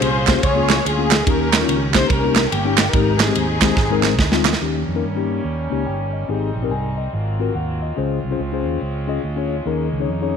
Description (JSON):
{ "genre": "uptempo gospel", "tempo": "143 BPM", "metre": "4/4", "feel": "swing 63% on 8ths", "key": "unclear", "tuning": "A4 = 442 Hz", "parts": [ { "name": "dark studio string section", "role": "melody", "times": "0.0-4.5 s", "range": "Bb3 to Db5", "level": "-21 LUFS", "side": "left 1 dB", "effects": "none" }, { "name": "mellow tine electric piano", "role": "accompaniment", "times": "0.0-10.4 s", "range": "Ab2 to Ab5", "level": "-22 LUFS", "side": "left 9 dB", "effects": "slow stereo tremolo" }, { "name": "fingered electric bass", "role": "bass", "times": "0.0-10.4 s", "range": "G1 to G2", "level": "-23 LUFS", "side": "right 2 dB", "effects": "none" }, { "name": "modern studio drum kit", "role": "drums", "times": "0.0-4.6 s", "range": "kick drum, ride cymbal, snare drum", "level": "-19 LUFS", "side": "right 2 dB", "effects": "none" }, { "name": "group handclap", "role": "percussion", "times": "0.3-4.5 s", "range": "none", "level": "-23 LUFS", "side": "right 15 dB", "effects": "none" }, { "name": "muted French horn section", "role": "sustained chords", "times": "4.6-10.4 s", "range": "Eb3 to F4", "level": "-30 LUFS", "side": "right 1 dB", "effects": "none" } ], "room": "moderate echo chamber reverb, RT60 1.9 s, small room ambience", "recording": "1960s-style stereo with parts hard left and right", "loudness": "-16 LUFS", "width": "side -7 dB against mid", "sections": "0.0-4.6 A section; 4.6-10.4 B section", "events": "drum fill 3.8-4.6", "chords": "0.0 Bbm7; 1.3 Eb7; 2.9 Abmaj7; 4.6 Eb7; 6.3 Abmaj7; 7.1 Ab13; 8.0 Dbmaj7; 9.7 Eb7sus4" }